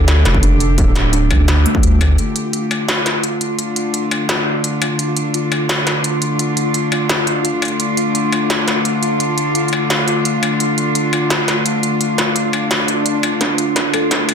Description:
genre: half-time drum and bass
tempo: 171 BPM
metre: 4/4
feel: half-time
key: D minor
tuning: A4 = 440 Hz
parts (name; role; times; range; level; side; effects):
- warm chamber cello section; sustained chords; 0.0-14.3 s; D3 to G4; -19 LUFS; equal; sidechain pumping, low-pass filter
- kalimba; arpeggios; 0.0-2.2, 13.4-14.3 s; D3 to A4; -22 LUFS; right 2 dB; low-pass filter, dub echo
- saturated sub bass; bass; 0.0-2.2 s; D1 to D2; -13 LUFS; equal; tube saturation
- pulsing gated texture; texture; 0.0-14.3 s; F4 to A4; -24 LUFS; left 2 dB; chorus, built-in reverb
- industrial drum kit; drums; 0.1-14.3 s; hi-hat, snare drum, struck metal; -18 LUFS; equal; none
- electronic kick drum; drums; 0.3-2.1, 13.4-14.2 s; none; -18 LUFS; equal; distortion, high-pass filter on kick, high-pass filter on room
- swell; sound effects; 12.8-13.4 s; none; -23 LUFS; left 2 dB; none
room: light reverb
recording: dense, heavily limited modern master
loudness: -14 LUFS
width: side -7 dB against mid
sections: 0.0-2.2 A section; 2.2-13.4 B section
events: drop 0.0-2.2; swell 12.8-13.4; drum fill 13.4-14.3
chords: 0.0 Dm

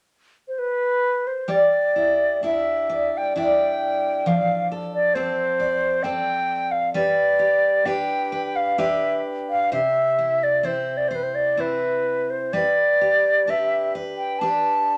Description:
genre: celtic folk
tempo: 65 BPM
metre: 3/4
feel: uneven beats, rubato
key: G mixolydian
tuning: A4 = 441 Hz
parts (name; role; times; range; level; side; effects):
- wooden flute; melody; 0.5-15.0 s; B4 to A5; -22 LUFS; equal; none
- picked steel-string acoustic guitar; accompaniment; 1.5-15.0 s; C3 to D5; -28 LUFS; equal; none
room: moderate studio reverb, RT60 0.7 s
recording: none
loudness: -22 LUFS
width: mono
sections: 0.0-1.5 A section; 1.5-15.0 B section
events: none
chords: 0.0 N.C.; 1.5 G5; 4.3 F6; 6.9 G; 9.7 C; 12.5 G

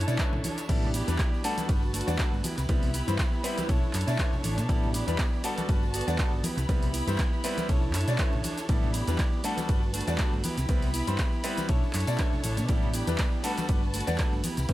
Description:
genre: filtered disco house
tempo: 120 BPM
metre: 4/4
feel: swing 55% on 16ths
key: unclear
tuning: A4 = 440 Hz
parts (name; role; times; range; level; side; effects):
- dark chamber string section; sustained chords; 0.0-14.7 s; D4 to B5; -38 LUFS; left 1 dB; sidechain pumping
- clean electric guitar; riff; 0.0-14.7 s; A3 to D5; -36 LUFS; right 3 dB; sidechain pumping, analog delay
- hollow-body short-scale fingered electric bass; bass; 0.0-14.7 s; G1 to B2; -30 LUFS; equal; tube saturation, sidechain pumping
- punchy analog drum machine; drums; 0.0-14.7 s; cabasa, crash cymbal, handclaps, hi-hat, ride cymbal; -36 LUFS; right 1 dB; analog delay
- bright concert grand piano; accompaniment; 0.1-14.7 s; G3 to D5; -34 LUFS; left 2 dB; phaser, vintage 12-bit sampler grit, sidechain pumping
- tambourine and congas; percussion; 0.1-14.7 s; none; -39 LUFS; left 1 dB; none
- electronic kick drum; drums; 0.2-14.7 s; none; -27 LUFS; equal; none
room: little or no reverb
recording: echo-heavy mix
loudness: -25 LUFS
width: side -15 dB against mid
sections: 0.0-14.7 A section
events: none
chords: 0.0 Bm11; 0.7 A9sus4; 1.4 Gmaj9; 2.4 Cmaj7; 3.7 Bm11; 4.7 A9sus4; 5.4 Gmaj9; 6.4 Cmaj7; 7.7 Bm11; 8.7 A9sus4; 9.4 Gmaj9; 10.4 Cmaj7; 11.7 Bm11; 12.7 A9sus4; 13.4 Gmaj9

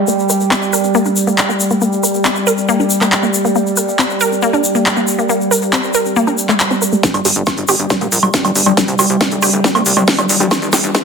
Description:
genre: psychedelic trance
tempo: 138 BPM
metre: 4/4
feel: straight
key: G phrygian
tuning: A4 = 440 Hz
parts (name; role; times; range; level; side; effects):
- evolving wavetable pad; sustained chords; 0.0-11.0 s; G3; -17 LUFS; right 2 dB; chorus, built-in reverb, sidechain pumping
- wide unison pluck; riff; 0.0-11.0 s; G3 to Bb4; -17 LUFS; moving between left 6 dB and right 2 dB; auto-pan, cassette tape, sidechain pumping, ping-pong delay
- tube shaker; percussion; 0.1-11.0 s; none; -21 LUFS; left 3 dB; none
- techno drum kit; drums; 0.5-11.0 s; handclaps, hi-hat, snare drum, woodblock; -15 LUFS; right 1 dB; none
- electronic kick drum; drums; 7.0-11.0 s; none; -19 LUFS; equal; high-pass filter on kick
- riser; sound effects; 8.5-11.0 s; none; -30 LUFS; equal; none
- plucky analog bass; bass; 7.1-10.9 s; D1 to C2; -20 LUFS; left 1 dB; high-pass filter
room: moderate digital room reverb, RT60 1.2 s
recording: dense, heavily limited modern master, high-pass filter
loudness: -11 LUFS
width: side -5 dB against mid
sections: 0.0-7.0 A section; 7.0-11.0 B section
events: filter sweep on synth arpeggio sound 0.0-7.0, 7.0-11.0; build-up 7.0-11.0; drum fill 7.0-11.0; riser 8.5-11.0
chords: 0.1 Gm; 7.0 G5

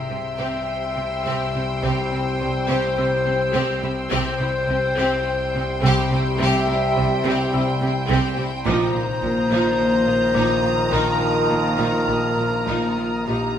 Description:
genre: cinematic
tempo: 52 BPM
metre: 4/4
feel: straight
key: unclear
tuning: A4 = 440 Hz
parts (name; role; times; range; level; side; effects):
- rich studio violin section; melody; 0.0-13.6 s; G5 to Bb5; -29 LUFS; left 1 dB; none
- dark clarinet; second line; 0.0-13.6 s; G4 to E5; -24 LUFS; left 2 dB; none
- clear trombone section; sustained chords; 0.0-13.6 s; C3 to G3; -30 LUFS; right 4 dB; none
- dark French horn section; sustained chords; 0.0-13.6 s; Eb3 to G4; -30 LUFS; left 3 dB; none
- evolving wavetable pad; sustained chords; 0.0-13.6 s; F4 to Eb6; -33 LUFS; equal; chorus, built-in reverb
- overtone-sweeping drone; drone; 0.0-13.6 s; Bb1 to C2; -32 LUFS; equal; chorus, built-in reverb
- timpani; percussion; 0.0-1.2 s; C3; -41 LUFS; equal; none
- rich symphonic violin section; texture; 0.0-13.6 s; Bb5 to F6; -35 LUFS; equal; none
- clear symphonic violin section; second line; 0.1-13.6 s; Bb3 to G4; -30 LUFS; left 1 dB; none
- rich symphonic viola section; accompaniment; 0.1-13.6 s; F3 to C4; -29 LUFS; right 2 dB; none
- marimba with medium hard mallets; riff; 0.1-13.6 s; Bb2 to C4; -27 LUFS; left 3 dB; none
- rich symphonic cello section; bass; 0.1-13.4 s; Bb2 to C3; -28 LUFS; right 3 dB; none
- warm symphonic double bass section; bass; 0.1-13.4 s; Bb1 to C2; -28 LUFS; right 4 dB; none
- concert harp; texture; 7.5-10.9 s; E5; -37 LUFS; left 4 dB; none
room: wet recital hall reverb, RT60 1.4 s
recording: none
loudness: -18 LUFS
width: side -9 dB against mid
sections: 0.0-13.6 A section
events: none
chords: 0.0 C; 8.7 Bbsus4

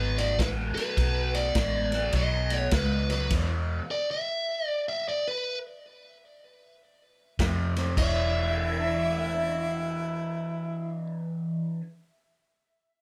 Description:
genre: electric blues shuffle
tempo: 103 BPM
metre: 4/4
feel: swing 64% on 8ths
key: E mixolydian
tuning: A4 = 443 Hz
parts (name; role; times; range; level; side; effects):
- biting lead guitar; melody; 0.0-11.1 s; B4 to E5; -33 LUFS; equal; overdrive
- raw garage guitar; riff; 0.0-3.8, 7.4-11.8 s; E2 to C#5; -34 LUFS; equal; overdrive, phaser
- vintage muted fingered electric bass; bass; 0.0-3.8, 7.4-11.8 s; E1 to F2; -32 LUFS; equal; none
- vintage drum kit; drums; 0.2-3.5, 7.4-8.1 s; crash cymbal, kick drum, ride cymbal, snare drum; -32 LUFS; equal; none
- clear harmonica; second line; 8.0-11.1 s; E4; -35 LUFS; equal; overdrive
room: moderate club reverb, RT60 0.6 s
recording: none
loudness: -28 LUFS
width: mono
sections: 0.0-8.0 A section; 8.0-10.3 B section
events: stop 3.3-7.4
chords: 0.0 B7sus2; 3.3 E5; 7.4 F5; 8.0 E6

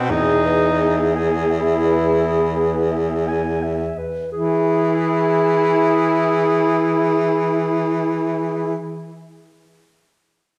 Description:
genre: classical, lyrical piece for single-reed quartet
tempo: 41-47 BPM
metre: 3/4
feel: rubato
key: E major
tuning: A4 = 437 Hz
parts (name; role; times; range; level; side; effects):
- warm clarinet; melody; 0.0-8.7 s; G#4 to G#5; -27 LUFS; equal; none
- warm tenor saxophone; accompaniment; 0.0-8.8 s; C4 to E4; -24 LUFS; equal; none
- bright baritone saxophone; bass; 0.0-8.7 s; E2 to E3; -23 LUFS; equal; none
- clear alto saxophone; second line; 0.1-8.8 s; G#4; -25 LUFS; equal; none
room: wet recital hall reverb, RT60 1.8 s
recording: recorded in a church or concert hall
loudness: -19 LUFS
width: mono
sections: 0.0-4.3 A section; 4.3-8.4 B section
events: slowing down 0.0-4.3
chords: 0.1 E

